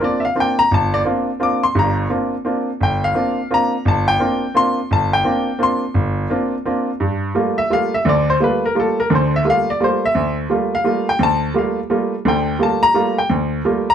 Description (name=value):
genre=jazz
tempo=172 BPM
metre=3/4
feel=swing 64% on 8ths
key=G dorian from 7.0 s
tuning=A4 = 442 Hz
part: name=clear baby grand piano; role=solo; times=0.0-13.9 s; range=G1 to D6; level=-15 LUFS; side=equal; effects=none
room=moderate studio ambience, RT60 0.5 s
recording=dark, warm production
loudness=-15 LUFS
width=side -8 dB against mid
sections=0.0-7.0 A section; 7.0-13.9 A section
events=none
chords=0.0 C9sus4; 7.0 Gm9